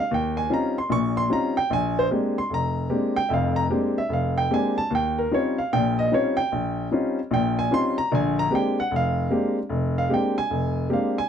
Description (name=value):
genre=solo jazz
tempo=150 BPM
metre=4/4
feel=swing 64% on 8ths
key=Bb mixolydian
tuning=A4 = 440 Hz
part: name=warm baby grand piano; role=solo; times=0.0-11.3 s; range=F1 to Db6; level=-21 LUFS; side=equal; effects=none
room=light reverb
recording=dark, warm production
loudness=-21 LUFS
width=side -8 dB against mid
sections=0.0-11.3 A section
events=grand piano solo 0.0-11.3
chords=0.1 Eb13; 1.7 Bb13; 4.9 Eb13; 8.1 Bb13